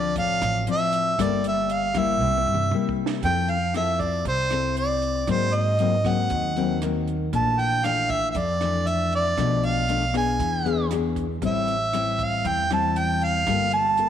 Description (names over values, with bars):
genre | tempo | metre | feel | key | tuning
bossa nova | 117 BPM | 4/4 | straight | F major | A4 = 440 Hz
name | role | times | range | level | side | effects
warm harmonica | melody | 0.0-14.1 s | C5 to A5 | -24 LUFS | right 2 dB | none
nylon-string guitar | accompaniment | 0.0-14.1 s | F2 to A4 | -26 LUFS | left 8 dB | none
upright bass | bass | 0.0-14.1 s | G1 to Ab2 | -28 LUFS | right 2 dB | none
compact cocktail drum kit | drums | 0.2-14.1 s | hi-hat, kick drum, rim click, snare drum, toms | -35 LUFS | right 6 dB | none
room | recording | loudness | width
moderate echo chamber reverb, RT60 1.7 s, small room ambience | 1960s-style stereo with parts hard left and right | -21 LUFS | side -9 dB against mid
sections
0.0-3.2 A section; 3.2-14.1 B section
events
drum fill 2.2-3.2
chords
0.0 Dm9; 1.2 Gm9; 2.2 C7; 3.2 Fmaj7; 5.3 Ab9; 7.3 Bbmaj7#11; 9.4 Bm7b5; 10.4 E7; 11.4 Am7; 13.5 Gm9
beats
0.16 0.67 | 1.19 1.70 2.21 2.72 | 3.23 3.74 4.25 4.76 | 5.28 5.79 6.30 6.81 | 7.32 7.83 8.34 8.86 | 9.37 9.88 10.39 10.90 | 11.41 11.93 12.44 12.95 | 13.46 13.97